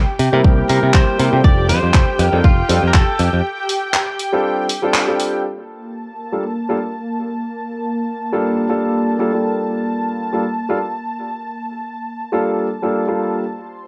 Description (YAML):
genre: nu-disco, nu disco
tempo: 120 BPM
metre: 4/4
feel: swing 54% on 16ths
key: G minor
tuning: A4 = 440 Hz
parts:
  - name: lush unison pad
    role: sustained chords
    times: 0.0-13.9 s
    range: Bb3 to C6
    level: -25 LUFS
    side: equal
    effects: chorus, sidechain pumping, cassette tape
  - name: modern bright picked electric bass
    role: bass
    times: 0.0-3.4 s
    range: F1 to C3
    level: -19 LUFS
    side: equal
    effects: none
  - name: house drum kit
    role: drums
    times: 0.2-5.3 s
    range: handclaps, hi-hat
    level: -23 LUFS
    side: equal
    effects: cassette tape
  - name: dark baby grand piano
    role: accompaniment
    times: 0.3-13.4 s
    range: G3 to Bb4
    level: -22 LUFS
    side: equal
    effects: sidechain pumping, cassette tape, analog delay
  - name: electronic kick drum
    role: drums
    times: 0.4-3.1 s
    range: none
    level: -15 LUFS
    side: equal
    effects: cassette tape
  - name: direct-recorded clean electric guitar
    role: melody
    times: 0.7-3.3 s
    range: F4 to D5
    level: -25 LUFS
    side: equal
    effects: cassette tape, tape echo
room: moderate studio reverb, RT60 0.5 s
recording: home recording on cassette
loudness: -18 LUFS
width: mono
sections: 0.0-5.4 A section; 5.4-13.9 B section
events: break 3.4-5.4; band accent 4.9; filter sweep on analog synth pad 5.4-13.9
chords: 0.0 C7; 1.4 F69; 5.4 Gm9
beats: 0.44 0.94 | 1.44 1.94 2.44 2.94 | 3.44 3.94 4.44 4.94 | 5.44 5.94 6.44 6.94 | 7.44 7.94 8.44 8.94 | 9.44 9.94 10.44 10.94 | 11.44 11.94 12.44 12.94 | 13.44